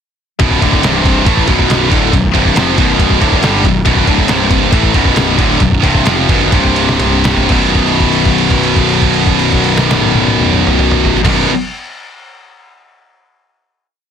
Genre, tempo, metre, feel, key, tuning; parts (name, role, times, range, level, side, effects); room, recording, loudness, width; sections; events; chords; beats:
heavy metal; 119-140 BPM; 4/4; straight; B minor; A4 = 440 Hz
heavy high-gain guitar; riff; 0.4-11.5 s; B1 to A3; -15 LUFS; left 12 dB; distortion
heavy high-gain guitar; riff; 0.4-11.5 s; B1 to A3; -14 LUFS; right 14 dB; distortion
fuzz picked electric bass; bass; 0.4-11.5 s; B0 to A1; -17 LUFS; equal; overdrive
trip hop sampler-style drum kit; drums; 0.4-11.4 s; crash cymbal, kick drum, ride cymbal, snare drum, toms; -15 LUFS; equal
light reverb; dense, heavily limited modern master; -9 LUFS; side -8 dB against mid
0.4-7.5 riff; 7.5-11.5 final chord
slowing down 3.8-7.5; drum fill 6.5-7.5; held note 7.5-11.2
0.4 Bm; 0.8 C5; 1.3 Bm; 4.3 C5; 4.7 Bm; 6.5 C5; 7.5 B5
| 0.40 0.83 1.26 1.70 | 2.13 2.56 2.99 3.42 | 3.85 4.28 4.71 5.16 | 5.60 6.06 6.53 7.01 | 7.50 8.01 8.51 9.02 | 9.53 10.03 10.54 11.04